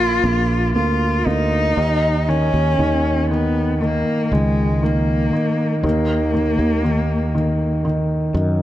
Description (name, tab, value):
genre	pop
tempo	59 BPM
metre	4/4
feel	straight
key	unclear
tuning	A4 = 440 Hz
part	warm cello	melody	0.0-7.8 s	Ab3 to F4	-21 LUFS	equal	none
part	felt-muted upright piano	accompaniment	0.0-8.6 s	Eb3 to Bb3	-20 LUFS	equal	none
part	sustaining fretless electric bass	bass	0.0-8.6 s	Bb1 to Gb2	-20 LUFS	equal	none
room	light reverb, studio reverb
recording	dark, warm production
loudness	-16 LUFS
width	side -13 dB against mid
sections	0.0-8.6 A section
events	none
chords	0.0 Bb; 1.8 Eb5; 5.8 Gb6 (rootless)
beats	0.76 | 1.78 2.80 3.82 4.83 | 5.84 6.84 7.85